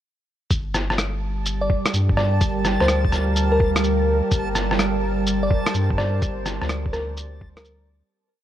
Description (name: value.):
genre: future garage.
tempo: 126 BPM.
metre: 4/4.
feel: swing 67% on 16ths.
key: G minor.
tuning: A4 = 438 Hz.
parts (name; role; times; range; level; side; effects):
deep dark ambient pad; sustained chords; 1.1-8.1 s; G3 to A5; -26 LUFS; right 2 dB; chorus, built-in reverb, sidechain pumping.
soft dub sub bass; bass; 0.5-8.0 s; G1 to G2; -24 LUFS; equal; sidechain pumping.
electronic kick drum; drums; 0.5-7.5 s; none; -22 LUFS; equal; none.
electronic shaker and rim click; drums; 0.5-7.8 s; none; -25 LUFS; equal; none.
backwards swelling texture; texture; 1.2-8.1 s; A5; -33 LUFS; right 3 dB; built-in reverb.
bell-like FM electric piano; melody; 1.6-7.9 s; Bb4 to D5; -26 LUFS; left 1 dB; chorus, tape echo.
room: light reverb.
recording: cassette tape.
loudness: -19 LUFS.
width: side -11 dB against mid.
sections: 0.5-8.1 groove.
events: fade-out 5.6-8.1.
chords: 0.5 Gm9; 4.3 Bbadd9/G.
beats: | 0.51 0.98 1.46 1.94 | 2.41 2.89 3.36 3.84 | 4.32 4.79 5.27 5.74 | 6.22 6.70 7.17 7.65.